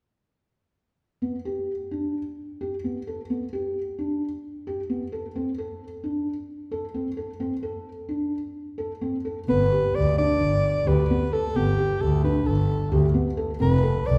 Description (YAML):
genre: contemporary instrumental, chamber music in an uneven meter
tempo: 262 BPM (eighths)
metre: 9/8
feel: straight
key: G mixolydian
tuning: A4 = 440 Hz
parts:
  - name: felt-muted upright piano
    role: arpeggios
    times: 1.2-14.1 s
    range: B3 to A4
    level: -30 LUFS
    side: equal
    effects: none
  - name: mellow soprano saxophone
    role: melody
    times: 9.5-14.2 s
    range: G4 to D5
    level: -28 LUFS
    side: equal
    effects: none
  - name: rich double bass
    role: bass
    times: 9.5-14.2 s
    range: F1 to D2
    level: -25 LUFS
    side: equal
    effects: none
room: wet concert hall reverb, RT60 1.9 s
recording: heard from further back in the room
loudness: -26 LUFS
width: mono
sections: 1.2-9.5 A section; 9.5-14.2 B section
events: none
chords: 1.2 G; 5.4 Amadd11/C; 9.5 G; 13.6 F6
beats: | 1.21 1.44 1.68 1.91 2.14 2.37 2.60 2.83 3.06 | 3.29 3.52 3.75 3.98 4.21 4.44 4.67 4.89 5.12 | 5.35 5.58 5.81 6.03 6.26 6.49 6.71 6.94 7.17 | 7.40 7.63 7.86 8.09 8.32 8.55 8.78 9.02 9.25 | 9.49 9.72 9.95 10.18 10.41 10.64 10.87 11.10 11.33 | 11.56 11.78 12.01 12.24 12.46 12.69 12.92 13.14 13.37 | 13.60 13.83 14.05